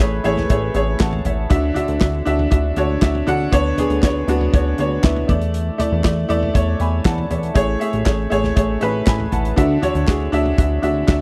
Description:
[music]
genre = piano-driven pop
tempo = 119 BPM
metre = 4/4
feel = straight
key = A major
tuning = A4 = 438 Hz
[part]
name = bright upright piano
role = accompaniment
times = 0.0-11.2 s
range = A2 to B5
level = -22 LUFS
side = equal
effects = none
[part]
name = chorused synth bass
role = bass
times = 0.0-11.2 s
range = A1 to E2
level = -23 LUFS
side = equal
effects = none
[part]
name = natural country drum kit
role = drums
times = 0.0-11.2 s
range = handclaps, hi-hat, kick drum, snare drum, toms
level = -21 LUFS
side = equal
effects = none
[sound]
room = little or no reverb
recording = dry, close 1970s-style studio recording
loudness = -18 LUFS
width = mono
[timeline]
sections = 0.0-11.2 A section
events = none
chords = 0.0 Amaj7; 1.5 Dadd9; 3.5 Bmadd9/D; 5.3 E7sus4; 7.6 Amaj7; 9.6 Dadd9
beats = 0.00 0.50 1.01 | 1.51 2.02 2.52 3.02 | 3.53 4.03 4.54 5.04 | 5.54 6.05 6.55 7.06 | 7.56 8.06 8.57 9.07 | 9.58 10.08 10.58 11.09

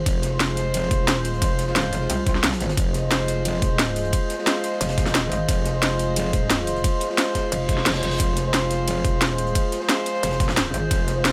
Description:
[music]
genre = dark technical drum and bass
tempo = 177 BPM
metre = 4/4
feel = straight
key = F minor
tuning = A4 = 440 Hz
[part]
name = dark analog pad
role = sustained chords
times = 0.0-11.3 s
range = F4 to Eb5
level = -32 LUFS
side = equal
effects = chorus, vintage 12-bit sampler grit, sidechain pumping
[part]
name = metallic wobble bass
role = bass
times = 0.0-11.3 s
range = F1 to C2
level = -28 LUFS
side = equal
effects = distortion, chorus, tube saturation
[part]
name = crunchy breakbeat drum kit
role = drums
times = 0.1-11.3 s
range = hi-hat, snare drum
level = -38 LUFS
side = equal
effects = none
[part]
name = drum and bass drum kit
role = drums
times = 0.1-11.3 s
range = hi-hat, ride cymbal, snare drum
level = -27 LUFS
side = equal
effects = overdrive
[part]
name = electronic kick drum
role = drums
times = 0.1-11.0 s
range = none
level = -26 LUFS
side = equal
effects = overdrive
[part]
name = dark brass ensemble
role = stabs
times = 0.3-11.3 s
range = Ab3 to C5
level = -30 LUFS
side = equal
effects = dub echo
[part]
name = reverse cymbal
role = sound effects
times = 7.6-8.2 s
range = none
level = -35 LUFS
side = equal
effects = none
[sound]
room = light reverb, small room ambience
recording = none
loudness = -22 LUFS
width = mono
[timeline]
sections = 0.0-11.3 A section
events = reverse cymbal 7.6-8.2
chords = 0.0 Fm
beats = | 0.06 0.40 0.74 1.08 | 1.42 1.76 2.10 2.44 | 2.77 3.11 3.45 3.79 | 4.13 4.47 4.81 5.15 | 5.49 5.83 6.16 6.50 | 6.84 7.18 7.52 7.86 | 8.20 8.54 8.88 9.21 | 9.55 9.89 10.23 10.57 | 10.91 11.25

